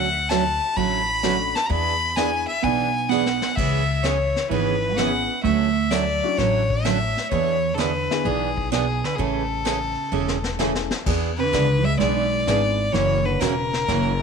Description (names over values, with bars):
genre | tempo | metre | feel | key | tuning
country, western swing | 128 BPM | 4/4 | swing 68% on 8ths | unclear | A4 = 440 Hz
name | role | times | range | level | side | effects
clear fiddle | melody | 0.0-14.2 s | G#4 to B5 | -23 LUFS | left 2 dB | tape echo
picked steel-string acoustic guitar | accompaniment | 0.0-14.1 s | C#3 to G#4 | -27 LUFS | right 12 dB | none
upright bass | bass | 0.0-14.2 s | E1 to E2 | -26 LUFS | left 2 dB | none
vintage brush drum kit | drums | 0.3-14.2 s | brushed snare drum, crash cymbal, hi-hat, kick drum, snare drum | -30 LUFS | left 3 dB | none
warm upright piano | accompaniment | 1.2-14.2 s | A3 to B4 | -29 LUFS | left 15 dB | none
vintage hollow-body jazz guitar | second line | 2.6-14.2 s | B2 to B3 | -26 LUFS | right 11 dB | none
room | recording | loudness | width
light reverb, small room ambience | 1960s-style stereo with parts hard left and right | -19 LUFS | side -6 dB against mid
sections
0.0-11.1 A section; 11.1-14.2 B section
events
drum fill 3.1-3.6, 10.1-11.1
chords
0.0 Dmaj7; 1.7 E7; 3.6 C#m7; 5.4 Dmaj9; 7.3 E7; 9.2 Amaj7; 11.1 E7; 12.9 F#7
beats
0.30 0.77 1.24 | 1.71 2.17 2.64 3.11 | 3.57 4.04 4.51 4.98 | 5.45 5.91 6.38 6.85 | 7.32 7.79 8.25 8.72 | 9.19 9.66 10.13 10.60 | 11.07 11.54 12.01 12.47 | 12.95 13.41 13.88